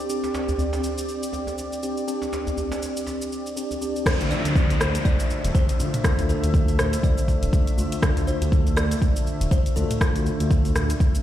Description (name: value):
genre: afro house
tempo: 121 BPM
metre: 4/4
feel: swing 57% on 16ths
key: D minor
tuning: A4 = 444 Hz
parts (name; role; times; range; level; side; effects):
- warm analog pad; sustained chords; 0.0-11.2 s; D3 to E5; -31 LUFS; right 2 dB; wide subtle chorus, sidechain pumping
- mellow tine electric piano; stabs; 0.0-11.2 s; A3 to G4; -30 LUFS; left 1 dB; medium stereo tremolo, sidechain pumping, tape echo
- afro-pop drum kit; drums; 0.1-11.2 s; crash cymbal, hi-hat, rim click, shaker, toms; -30 LUFS; equal; none
- djembe; percussion; 0.2-3.8 s; none; -31 LUFS; equal; none
- kalimba; melody; 4.1-10.7 s; A4 to D5; -32 LUFS; left 3 dB; dub echo
- electronic kick drum; drums; 4.1-11.1 s; none; -20 LUFS; equal; none
- downlifter; sound effects; 4.1-8.0 s; none; -32 LUFS; equal; none
- smooth gliding synth bass; bass; 4.2-10.9 s; D1 to D2; -23 LUFS; equal; sidechain pumping
room: light reverb, digital ambience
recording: played on a big sound system in a bare room, large studio reverb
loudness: -20 LUFS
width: side -12 dB against mid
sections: 0.0-4.1 A section; 4.1-11.2 B section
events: drop 4.1-11.2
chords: 0.0 Csus2; 4.1 Dm